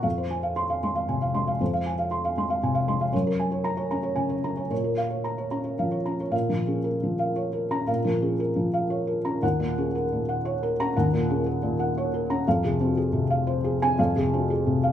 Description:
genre	neoclassical minimalist piano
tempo	117 BPM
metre	3/4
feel	rubato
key	Bb minor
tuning	A4 = 438 Hz
part	felt-muted upright piano	solo	0.0-14.9 s	Eb2 to C6	-23 LUFS	equal	none
room	moderate large studio reverb, RT60 0.9 s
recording	band playing live in one room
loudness	-23 LUFS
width	side -10 dB against mid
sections	0.0-6.3 A section; 6.3-14.9 B section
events	none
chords	0.0 Fm; 3.1 Gbadd9; 4.7 Bbm; 9.4 Ebm7; 12.5 Fm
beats	| 0.05 0.57 1.09 | 1.60 2.11 2.62 | 3.13 3.65 4.17 | 4.71 5.25 5.79 | 6.33 6.86 7.37 | 7.88 8.40 8.91 | 9.43 9.94 10.44 | 10.94 11.44 11.95 | 12.46 12.96 13.47 | 13.98 14.49

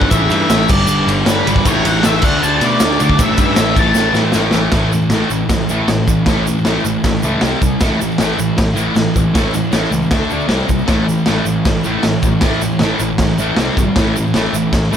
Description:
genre	garage rock duo or trio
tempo	156 BPM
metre	4/4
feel	straight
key	unclear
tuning	A4 = 437 Hz
part	octave-fuzz lead guitar	melody	0.0-4.1 s	B4 to A5	-18 LUFS	left 2 dB	distortion
part	thick fuzz guitar	riff	0.0-15.0 s	G2 to D4	-16 LUFS	equal	distortion
part	fuzz picked electric bass	bass	0.0-15.0 s	G1 to B2	-20 LUFS	equal	overdrive
part	raw garage drum kit	drums	0.0-14.8 s	crash cymbal, kick drum, ride cymbal, snare drum	-16 LUFS	equal	none
part	tube shaker	percussion	0.1-15.0 s	none	-31 LUFS	right 9 dB	none
room	light reverb, small room ambience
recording	none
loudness	-12 LUFS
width	side -8 dB against mid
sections	0.0-4.7 A section; 4.7-15.0 B section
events	drum fill 4.0-4.7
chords	0.1 A5; 0.7 G; 1.7 A5; 2.2 D5; 3.2 A5; 7.4 C5; 7.8 A5; 10.1 D5; 10.5 C5; 10.9 A5; 13.6 C5; 14.0 A5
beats	| 0.12 0.50 0.89 1.27 | 1.66 2.04 2.42 2.81 | 3.19 3.58 3.96 4.34 | 4.73 5.11 5.50 5.88 | 6.27 6.65 7.04 7.42 | 7.81 8.19 8.58 8.96 | 9.35 9.73 10.12 10.50 | 10.89 11.27 11.66 12.04 | 12.43 12.81 13.20 13.58 | 13.96 14.35 14.73

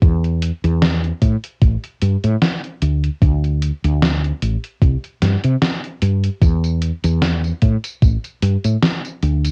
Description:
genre	vaporwave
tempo	75 BPM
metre	4/4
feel	swing 55% on 16ths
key	unclear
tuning	A4 = 439 Hz
part	woody fretless electric bass	bass	0.0-9.5 s	A1 to C3	-19 LUFS	equal	none
part	electronic kick drum	drums	0.0-8.2 s	none	-16 LUFS	equal	cassette tape
part	gated 80s digital drum machine	drums	0.0-9.5 s	hi-hat, snare drum, tambourine	-22 LUFS	equal	gated reverb, gated reverb snare, cassette tape
room	light reverb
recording	home recording on cassette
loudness	-18 LUFS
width	mono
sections	0.0-9.5 A section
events	none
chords	none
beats	| 0.02 0.82 1.62 2.42 | 3.22 4.02 4.82 5.62 | 6.42 7.22 8.02 8.82

